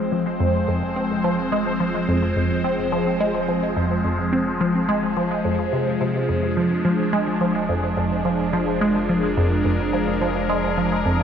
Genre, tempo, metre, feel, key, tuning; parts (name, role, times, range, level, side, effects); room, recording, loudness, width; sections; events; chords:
ambient, sequencer-driven space music; 107 BPM; 4/4; straight; F dorian; A4 = 444 Hz
phased analog pad; sustained chords; 0.0-11.2 s; F3 to C5; -22 LUFS; equal; phaser, chorus
round analog bass; bass; 0.0-11.2 s; F1; -36 LUFS; equal
resonant blip pluck; riff; 0.1-11.2 s; F2 to C4; -22 LUFS; equal; phaser, tape echo
wet spring reverb, RT60 2.1 s; echo-heavy mix; -19 LUFS; side -8 dB against mid
0.0-11.2 A section
fade-in on analog synth bass 0.0-11.2
0.0 Fm